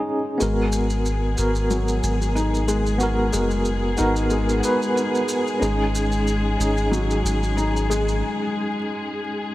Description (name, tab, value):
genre	trip hop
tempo	92 BPM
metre	4/4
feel	swing 54% on 16ths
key	G# minor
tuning	A4 = 440 Hz
part	tine electric piano	accompaniment	0.0-9.5 s	B3 to B4	-24 LUFS	right 1 dB	tremolo, tape echo
part	felt-muted upright piano	arpeggios	0.0-9.5 s	F#3 to D#4	-27 LUFS	left 2 dB	tape echo
part	dark studio string section	sustained chords	0.4-9.5 s	G#3 to G#4	-28 LUFS	left 1 dB	none
part	soft dub sub bass	bass	0.4-8.2 s	F#1 to G#1	-23 LUFS	equal	tube saturation
part	maracas	percussion	0.4-8.2 s	none	-34 LUFS	right 2 dB	none
room	light reverb, small room reverb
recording	vinyl crackle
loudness	-20 LUFS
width	side -16 dB against mid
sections	0.0-9.5 A section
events	break 8.2-9.5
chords	0.4 G#m7; 5.6 G#7sus4